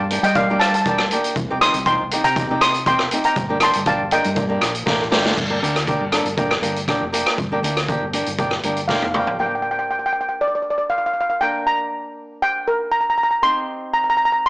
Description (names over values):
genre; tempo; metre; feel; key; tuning
calypso; 120 BPM; 4/4; straight; G minor; A4 = 440 Hz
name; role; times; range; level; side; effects
steel pan; melody; 0.0-5.1, 8.9-14.5 s; Bb4 to Eb6; -18 LUFS; equal; none
flamenco guitar; accompaniment; 0.0-14.5 s; Bb3 to Bb4; -23 LUFS; equal; none
hollow-body short-scale fingered electric bass; bass; 0.0-9.2 s; F1 to G3; -27 LUFS; equal; none
street-band drum kit; drums; 0.1-9.4 s; crash cymbal, hi-hat, kick drum, rim click, snare drum, toms; -22 LUFS; equal; none
room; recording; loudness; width
light reverb; blown-out, overdriven recording, overdrive, small speaker sound; -17 LUFS; side -23 dB against mid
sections
0.0-5.4 A section; 5.4-9.4 B section; 9.4-14.5 C section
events
drum fill 4.9-5.4, 8.9-9.4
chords
0.0 Gm7; 1.4 Cm; 3.4 Gm; 13.4 Cm